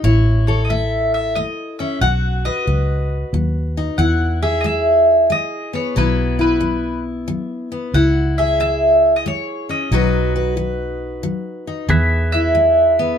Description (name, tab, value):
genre	honky-tonk and classic country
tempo	91 BPM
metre	3/4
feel	swing 66% on 8ths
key	E major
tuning	A4 = 440 Hz
part	mandolin	melody	0.0-13.2 s	B4 to F#5	-18 LUFS	equal	none
part	picked steel-string acoustic guitar	accompaniment	0.0-13.2 s	A2 to B4	-21 LUFS	left 2 dB	none
part	vintage muted fingered electric bass	bass	0.0-13.2 s	A1 to E2	-19 LUFS	equal	none
part	pedal steel guitar	sustained chords	11.9-13.2 s	G#4 to E5	-22 LUFS	equal	none
room	light reverb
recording	minimal, uncompressed stereo recording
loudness	-15 LUFS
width	side -8 dB against mid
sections	0.0-11.9 A section; 11.9-13.2 B section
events	none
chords	0.0 A; 2.0 B; 4.0 E; 6.0 Bsus4; 7.9 C#m; 9.9 B; 11.9 E